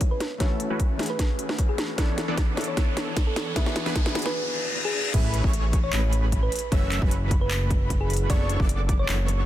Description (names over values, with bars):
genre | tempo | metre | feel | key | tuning
future bass | 152 BPM | 4/4 | half-time | A major | A4 = 439 Hz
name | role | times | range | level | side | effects
felt-muted upright piano | accompaniment | 0.0-5.2 s | A3 to C#5 | -37 LUFS | left 6 dB | sidechain pumping, ping-pong delay
supersaw stab | riff | 0.0-9.5 s | E3 to E5 | -32 LUFS | right 1 dB | sidechain pumping, low-pass filter
electronic kick drum | drums | 0.0-9.0 s | none | -24 LUFS | equal | none
trap drum kit | drums | 0.0-9.4 s | crash cymbal, handclaps, hi-hat, snare drum | -31 LUFS | equal | none
riser, reverse cymbal and impact | sound effects | 1.4-6.7 s | none | -33 LUFS | left 1 dB | none
thumb-piano-like synth pluck | melody | 0.1-9.2 s | G#4 to E5 | -33 LUFS | equal | chorus, sidechain pumping, tape echo
airy dreamy lead | arpeggios | 5.1-9.5 s | B5 to E6 | -36 LUFS | right 1 dB | chorus, cassette tape, sidechain pumping
fat analog bass | bass | 5.1-9.5 s | F#1 to A1 | -25 LUFS | equal | sidechain pumping
room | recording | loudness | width
digital ambience | dense, heavily limited modern master | -22 LUFS | side -13 dB against mid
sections
0.0-5.1 A section; 5.1-9.5 B section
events
build-up 0.0-5.1; drum fill 0.0-4.3; filter sweep on supersaw synth 0.0-5.1; filter sweep on synth pluck 0.0-5.1; riser 1.4-5.1; reverse cymbal 4.3-5.1; drop 5.1-9.5; impact 5.1-6.7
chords
0.2 F#m7; 2.0 Bm11; 3.6 E7; 5.1 Amaj9; 6.5 F#m7; 8.3 Bm11/F#